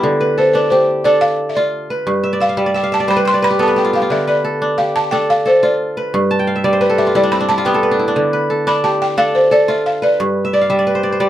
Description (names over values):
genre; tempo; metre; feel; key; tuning
west african traditional; 118 BPM (dotted quarters); 12/8; straight; D dorian; A4 = 439 Hz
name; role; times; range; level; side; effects
kora; arpeggios; 0.0-11.3 s; G2 to A5; -15 LUFS; equal; none
balafon; melody; 0.4-10.8 s; B4 to C6; -15 LUFS; equal; none
room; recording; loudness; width
moderate small room reverb, RT60 0.5 s; none; -13 LUFS; side -12 dB against mid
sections
0.0-11.3 A section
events
balafon solo 0.0-11.3; kora fill 2.2-4.1, 6.3-8.2, 10.4-11.3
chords
0.0 Dm; 2.1 G; 4.1 Dm; 6.1 G; 8.2 Dm; 10.2 G